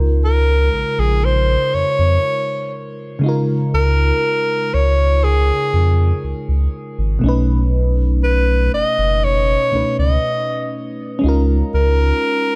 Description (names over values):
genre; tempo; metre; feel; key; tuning
contemporary R&B; 60 BPM; 4/4; straight; Db major; A4 = 440 Hz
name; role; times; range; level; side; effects
mellow FM electric piano; accompaniment; 0.0-12.6 s; Cb3 to Cb5; -24 LUFS; equal; chorus
sub bass with octave; bass; 0.0-12.1 s; Gb1 to F2; -18 LUFS; equal; none
breathy alto saxophone; melody; 0.2-12.6 s; Ab4 to Eb5; -21 LUFS; equal; tape echo
room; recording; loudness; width
small room ambience; none; -17 LUFS; mono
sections
0.0-12.6 A section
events
none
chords
0.0 Db6; 7.2 Cb9; 11.2 Db69